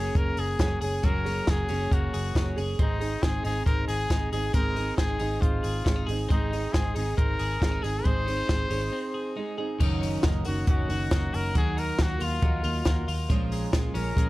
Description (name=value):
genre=jangly indie pop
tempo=137 BPM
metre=4/4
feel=straight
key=unclear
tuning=A4 = 441 Hz
part: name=bright trumpet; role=melody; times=0.0-14.3 s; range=Eb4 to C5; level=-32 LUFS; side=left 2 dB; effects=slapback echo
part: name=fingerpicked twelve-string acoustic guitar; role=accompaniment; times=0.0-14.3 s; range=Bb2 to Bb4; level=-33 LUFS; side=right 4 dB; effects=none
part: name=twelve-string electric guitar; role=arpeggios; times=0.0-14.3 s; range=Eb3 to Ab4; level=-35 LUFS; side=left 3 dB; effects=none
part: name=vintage muted fingered electric bass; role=bass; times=0.0-14.3 s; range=Gb1 to Eb2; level=-30 LUFS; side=equal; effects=none
part: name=compact cocktail drum kit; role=drums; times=0.2-14.3 s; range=crash cymbal, hi-hat, kick drum, snare drum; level=-27 LUFS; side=equal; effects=none
room=studio ambience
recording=dark, warm production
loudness=-24 LUFS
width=side -18 dB against mid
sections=0.0-9.8 A section; 9.8-14.3 B section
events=break 8.9-9.8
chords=0.0 Gbadd9; 2.8 Ab; 9.8 Gb6; 11.6 Ebmadd9; 13.3 Bbm7